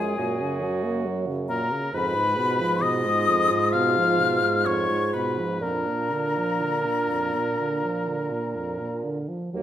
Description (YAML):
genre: classical, slow romantic movement for wind quintet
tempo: 60-69 BPM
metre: 4/4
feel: rubato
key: unclear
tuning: A4 = 440 Hz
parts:
  - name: hollow concert flute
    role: melody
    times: 0.0-9.0 s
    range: G#5 to F6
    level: -27 LUFS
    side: left 5 dB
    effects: none
  - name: warm oboe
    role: second line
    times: 0.0-9.1 s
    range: G#4 to F5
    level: -29 LUFS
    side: left 2 dB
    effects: none
  - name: mellow French horn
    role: accompaniment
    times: 0.0-9.6 s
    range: F2 to A#3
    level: -30 LUFS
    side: right 1 dB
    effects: none
  - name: warm clarinet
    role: accompaniment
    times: 0.0-9.6 s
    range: Bb3 to F#4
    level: -31 LUFS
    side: right 4 dB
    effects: none
  - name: dark bassoon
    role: bass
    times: 0.0-9.6 s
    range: Eb2 to Bb2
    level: -28 LUFS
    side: right 2 dB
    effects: none
room: wet recital hall reverb, RT60 1.3 s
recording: none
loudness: -22 LUFS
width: side -11 dB against mid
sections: 0.0-9.5 A section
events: none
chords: 0.2 F#; 1.9 Fdim; 5.6 Bb/F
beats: 0.19 1.06 | 1.94 2.82 3.73 4.66 | 5.62 6.61 7.59 8.56 | 9.55